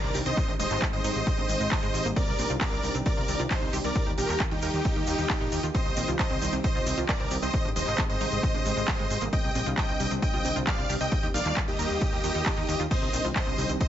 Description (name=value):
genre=uplifting trance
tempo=134 BPM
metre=4/4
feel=straight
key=C minor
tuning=A4 = 442 Hz
part: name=big supersaw lead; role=melody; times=0.0-13.9 s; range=Eb4 to G5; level=-30 LUFS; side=equal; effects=sidechain pumping, dub echo
part: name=lush unison pad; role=sustained chords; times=0.0-13.9 s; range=C3 to Eb5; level=-35 LUFS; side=left 1 dB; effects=chorus, sidechain pumping
part: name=wide unison pluck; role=arpeggios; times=0.0-13.8 s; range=G3 to C5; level=-37 LUFS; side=right 3 dB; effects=sidechain pumping, dub echo
part: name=plucky analog bass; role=bass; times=0.0-13.8 s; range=Eb1 to Eb2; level=-32 LUFS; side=equal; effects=sidechain pumping
part: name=techno drum kit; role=drums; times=0.0-13.9 s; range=crash cymbal, handclaps, hi-hat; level=-34 LUFS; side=right 1 dB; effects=sidechain pumping on hats, sidechain pumping on cymbals
part: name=downlifter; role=sound effects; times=0.0-2.2 s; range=none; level=-48 LUFS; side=equal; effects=none
part: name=tube shaker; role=percussion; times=0.1-13.9 s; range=none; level=-41 LUFS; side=left 2 dB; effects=none
part: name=electronic kick drum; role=drums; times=0.4-13.9 s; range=none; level=-29 LUFS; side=equal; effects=none
room=light reverb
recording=nothing above 7.7 kHz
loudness=-24 LUFS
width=side -11 dB against mid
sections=0.0-13.9 A section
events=none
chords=0.4 Abmaj7; 2.2 Cmadd9; 4.0 Ebadd9; 5.7 Cm; 7.5 Abmaj7; 9.3 Cmadd9; 11.1 Ebadd9; 12.9 Cmadd9